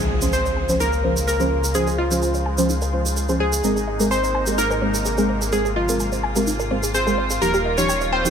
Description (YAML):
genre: progressive house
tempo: 127 BPM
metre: 4/4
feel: straight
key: Ab major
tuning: A4 = 440 Hz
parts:
  - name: plucky unison lead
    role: melody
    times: 0.0-8.3 s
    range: F4 to Db5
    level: -23 LUFS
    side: right 1 dB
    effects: dub echo
  - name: muted studio string section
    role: sustained chords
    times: 0.0-8.3 s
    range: C3 to C5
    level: -29 LUFS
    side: left 1 dB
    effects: low-pass filter
  - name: soft round pluck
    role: arpeggios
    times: 0.0-8.3 s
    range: Eb4 to Ab5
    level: -29 LUFS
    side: left 1 dB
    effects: analog chorus, dub echo
  - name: deep mellow chord stab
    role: stabs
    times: 0.0-8.3 s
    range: F3 to C5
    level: -24 LUFS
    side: equal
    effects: chorus
  - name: dark detuned saw bass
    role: bass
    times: 0.0-8.3 s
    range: Eb1 to Db2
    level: -25 LUFS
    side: equal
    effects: none
  - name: impact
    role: sound effects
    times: 0.0-1.7 s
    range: none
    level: -28 LUFS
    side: equal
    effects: none
  - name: electronic hi-hat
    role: drums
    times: 0.1-8.3 s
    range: none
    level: -42 LUFS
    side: equal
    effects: none
  - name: tube shaker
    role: percussion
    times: 0.2-8.3 s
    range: none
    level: -28 LUFS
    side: right 4 dB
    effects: none
room: light reverb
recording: none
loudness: -18 LUFS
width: side -7 dB against mid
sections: 0.0-8.3 A section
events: impact 0.0-1.7; filter sweep on synth pluck 0.0-8.3; filter sweep on string section 0.0-8.3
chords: 0.0 Dbmaj7; 3.6 Abadd9; 7.4 Ebadd9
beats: 0.33 0.80 1.28 | 1.75 2.22 2.69 3.17 | 3.64 4.11 4.58 5.06 | 5.53 6.00 6.47 6.95 | 7.42 7.89